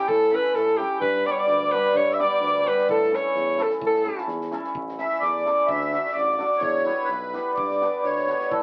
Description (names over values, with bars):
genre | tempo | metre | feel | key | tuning
balkan folk, Balkan wedding band | 128 BPM | 2/4 | swing 55% on 16ths | A mixolydian | A4 = 441 Hz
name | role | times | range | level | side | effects
warm alto saxophone | melody | 0.0-4.3 s | G4 to E5 | -24 LUFS | equal | none
accordion | second line | 0.0-8.6 s | A4 to E6 | -28 LUFS | equal | light tremolo tuning
hammered dulcimer | accompaniment | 0.0-8.5 s | G3 to B4 | -30 LUFS | equal | none
clear tuba | bass | 0.1-8.6 s | A1 to A2 | -35 LUFS | equal | none
compact cocktail drum kit | percussion | 0.1-8.6 s | kick drum, snare drum | -49 LUFS | equal | none
room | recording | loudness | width
wet studio ambience, RT60 0.5 s | very old 78 rpm record, vinyl crackle | -23 LUFS | mono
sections
0.0-4.8 A section; 4.8-8.6 B section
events
accordion solo 4.8-8.6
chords
0.0 A; 1.0 G; 2.9 A; 5.7 D; 6.6 Em; 7.6 G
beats
| 0.08 0.55 | 1.01 1.48 | 1.95 2.41 | 2.88 3.35 | 3.81 4.28 | 4.75 5.22 | 5.69 6.16 | 6.63 7.11 | 7.58 8.05 | 8.53